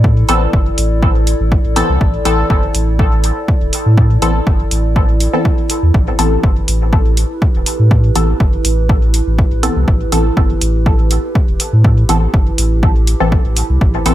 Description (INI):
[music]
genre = dub techno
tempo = 122 BPM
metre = 4/4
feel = straight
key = A minor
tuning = A4 = 440 Hz
[part]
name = warbly tape-like pad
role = sustained chords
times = 0.0-14.1 s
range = E4 to C6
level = -22 LUFS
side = right 2 dB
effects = chorus, built-in reverb, sidechain pumping
[part]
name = filtered dub chord stab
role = stabs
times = 0.0-14.1 s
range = E3 to A4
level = -19 LUFS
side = left 1 dB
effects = chorus, phaser, sidechain pumping, dub echo
[part]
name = warm sub bass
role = bass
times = 0.0-14.1 s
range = E1 to A2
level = -14 LUFS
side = equal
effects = sidechain pumping
[part]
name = electronic kick drum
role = drums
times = 0.0-13.9 s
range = none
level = -14 LUFS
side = equal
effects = overdrive
[part]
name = electronic hi-hat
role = drums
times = 0.3-14.1 s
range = none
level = -20 LUFS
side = right 1 dB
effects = overdrive
[sound]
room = little or no reverb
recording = echo-heavy mix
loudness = -11 LUFS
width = side -14 dB against mid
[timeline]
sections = 0.0-14.1 A section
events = none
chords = 0.0 Amadd9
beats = | 0.04 0.53 1.02 1.52 | 2.01 2.50 2.99 3.48 | 3.98 4.47 4.96 5.45 | 5.94 6.43 6.93 7.42 | 7.91 8.40 8.89 9.38 | 9.88 10.37 10.86 11.35 | 11.84 12.34 12.83 13.32 | 13.81